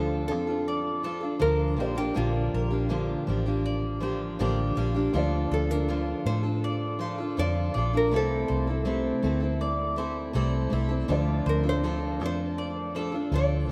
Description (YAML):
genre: pop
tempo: 81 BPM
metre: 4/4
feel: straight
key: unclear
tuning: A4 = 436 Hz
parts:
  - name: nylon-string guitar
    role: melody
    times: 0.0-13.7 s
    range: F4 to D5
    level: -34 LUFS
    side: equal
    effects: none
  - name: dark upright piano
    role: accompaniment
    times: 0.0-13.7 s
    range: F3 to D5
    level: -41 LUFS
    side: equal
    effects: none
  - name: picked steel-string acoustic guitar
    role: accompaniment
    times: 0.0-13.7 s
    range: Bb2 to A4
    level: -32 LUFS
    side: equal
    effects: none
  - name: vintage muted fingered electric bass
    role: bass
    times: 0.0-13.7 s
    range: A1 to A2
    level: -31 LUFS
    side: equal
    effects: none
  - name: bowl-back mandolin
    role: arpeggios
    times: 0.7-13.1 s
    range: A4 to F5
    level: -40 LUFS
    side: equal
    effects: none
room: wet cathedral reverb, RT60 6.2 s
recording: in a vast, echoing space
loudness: -27 LUFS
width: mono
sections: 0.0-13.7 A section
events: none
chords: 0.0 Dm; 1.8 Bb6; 5.1 Dm; 8.1 Am/C; 11.1 Dm